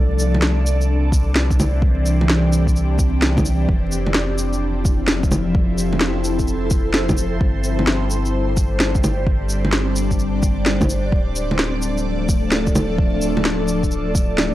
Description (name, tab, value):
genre	future garage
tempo	129 BPM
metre	4/4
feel	swing 64% on 16ths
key	D minor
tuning	A4 = 440 Hz
part	ethereal airy pad	sustained chords	0.0-14.5 s	E3 to D5	-22 LUFS	equal	ensemble chorus, built-in reverb, phaser, sidechain pumping
part	warm sub bass	bass	0.0-14.5 s	D1 to C2	-21 LUFS	equal	sidechain pumping
part	electronic shaker, bongos and snare drum	drums	0.2-14.5 s	none	-20 LUFS	equal	none
part	electronic kick drum	drums	1.1-14.3 s	none	-19 LUFS	equal	none
room	light reverb, digital ambience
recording	dry, gritty hardware recording, transformer saturation, vinyl crackle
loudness	-16 LUFS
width	side -14 dB against mid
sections	0.0-14.5 A section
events	kick drops out 14.4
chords	0.0 Cadd9; 3.7 Fmaj7; 7.4 Gsus4; 11.1 Dm